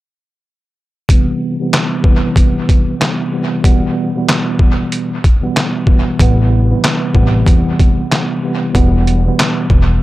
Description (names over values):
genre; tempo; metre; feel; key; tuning
hip hop, boom-bap hip-hop; 94 BPM; 4/4; swing 61% on 16ths; unclear; A4 = 440 Hz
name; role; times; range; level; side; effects
mellow tine electric piano; accompaniment; 1.1-10.0 s; B2 to B3; -16 LUFS; right 1 dB; medium stereo tremolo, cassette tape, high-pass filter, low-pass filter, dub echo
trip hop sampler-style drum kit; drums; 1.1-9.9 s; handclaps, hi-hat, kick drum, snare drum; -12 LUFS; equal; dub echo
upright bass; bass; 6.2-10.0 s; E1 to E2; -13 LUFS; equal; none
room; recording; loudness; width
little or no reverb; echo-heavy mix; -11 LUFS; side -17 dB against mid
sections
1.1-10.0 A section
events
filter sweep on tine electric piano 1.1-10.0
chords
1.1 Cmaj7; 3.6 Em; 6.2 Am7; 8.8 Em